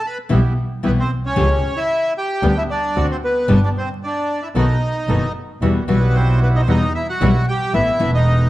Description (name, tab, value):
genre	tango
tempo	113 BPM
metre	4/4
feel	rubato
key	G major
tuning	A4 = 439 Hz
part	bandoneon	melody	0.0-8.5 s	B3 to B5	-21 LUFS	equal	none
part	nylon-string guitar	accompaniment	0.3-8.1 s	B2 to G4	-21 LUFS	left 2 dB	none
part	bandoneon	stabs	0.3-8.5 s	E3 to A4	-28 LUFS	right 3 dB	none
part	rich double bass	bass	0.3-8.5 s	E1 to E2	-18 LUFS	equal	none
room	moderate large studio reverb, RT60 1.3 s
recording	dark, warm production, vinyl crackle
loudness	-15 LUFS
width	side -16 dB against mid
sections	0.0-5.6 A section; 5.6-8.5 B section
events	none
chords	0.3 Em/B; 1.4 A7/C#; 2.4 G/D; 3.0 D7; 3.5 G; 4.5 B7; 5.6 Emadd9; 7.7 Asus2